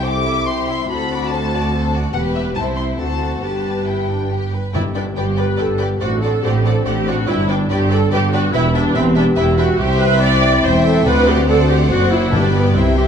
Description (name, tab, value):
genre	quick classical-period movement for symphony orchestra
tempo	142 BPM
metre	3/4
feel	straight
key	G major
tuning	A4 = 438 Hz
part	rich studio violin section	melody	0.0-13.1 s	E5 to D6	-27 LUFS	left 4 dB	none
part	rich studio violin section	second line	0.0-13.1 s	D4 to E5	-24 LUFS	left 3 dB	none
part	clear studio viola section	accompaniment	0.0-13.0 s	B3 to D5	-20 LUFS	right 2 dB	none
part	dark French horn section	sustained chords	0.0-13.1 s	B3 to G4	-22 LUFS	left 4 dB	none
part	rich studio cello section	bass	0.0-13.1 s	C2 to C3	-22 LUFS	right 2 dB	none
part	rich studio double bass section	bass	0.0-13.1 s	E1 to D2	-20 LUFS	right 2 dB	none
part	timpani	percussion	4.8-5.3, 11.1-12.7 s	G2 to D3	-23 LUFS	left 2 dB	none
room	wet recital hall reverb, RT60 1.8 s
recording	dark, warm production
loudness	-14 LUFS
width	side -7 dB against mid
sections	0.0-4.7 A section; 4.7-13.1 B section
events	none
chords	0.0 C; 0.9 D7; 2.1 Em; 2.6 Am/C (rootless); 3.0 D7; 3.4 G; 6.0 D7/A; 7.3 G; 8.5 Em; 9.8 C; 11.1 D7; 12.3 G